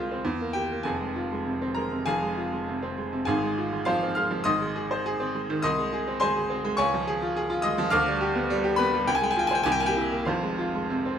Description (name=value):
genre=classical, virtuoso piano study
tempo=95-108 BPM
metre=2/4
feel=rubato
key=F minor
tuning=A4 = 440 Hz
part: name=bright baby grand piano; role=solo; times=0.0-11.2 s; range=F1 to F6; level=-24 LUFS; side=equal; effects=none
room=light reverb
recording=close, detailed microphones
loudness=-24 LUFS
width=side -8 dB against mid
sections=0.0-2.1 A section; 2.1-11.2 A section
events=none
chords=0.2 C7/E; 0.8 Fm; 3.3 Fm/Ab; 4.5 Ab; 5.6 Ab/C; 6.8 Db; 7.9 G7/D; 9.1 Fm/C; 9.7 C7; 10.3 Fm